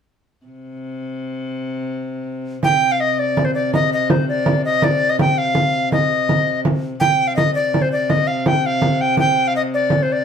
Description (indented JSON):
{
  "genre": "medieval dance",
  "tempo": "110 BPM (dotted quarters)",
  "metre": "6/8",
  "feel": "straight",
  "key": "C minor",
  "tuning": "A4 = 438 Hz",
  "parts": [
    { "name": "clear viola da gamba", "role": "drone", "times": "0.5-10.2 s", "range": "C3", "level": "-25 LUFS", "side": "left 1 dB", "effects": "none" },
    { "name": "bright tenor recorder", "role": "melody", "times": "2.6-10.2 s", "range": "C5 to G5", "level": "-17 LUFS", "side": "equal", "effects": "none" },
    { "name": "frame drum", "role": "percussion", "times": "2.6-10.1 s", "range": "none", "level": "-19 LUFS", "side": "right 2 dB", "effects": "none" }
  ],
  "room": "wet studio reverb, RT60 0.5 s",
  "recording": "band playing live in one room",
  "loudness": "-16 LUFS",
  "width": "side -7 dB against mid",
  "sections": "0.5-2.6 A section; 2.6-10.2 B section",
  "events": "none",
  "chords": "none"
}